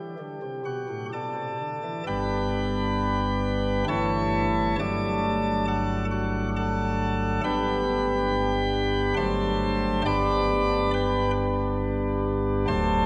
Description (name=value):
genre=classical, chorale-style piece for pipe organ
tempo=68 BPM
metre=3/4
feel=rubato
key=G major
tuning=A4 = 445 Hz
part: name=chamber organ, sparkling flutes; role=solo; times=0.0-13.1 s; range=D1 to D6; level=-26 LUFS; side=equal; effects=none
room=wet cathedral reverb, RT60 6.3 s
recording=recorded in a church or concert hall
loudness=-26 LUFS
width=mono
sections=0.0-2.1 A section; 2.1-13.1 A section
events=none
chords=0.0 G; 3.9 A7/G; 4.8 D/G; 7.4 G; 9.2 D7/G; 10.0 G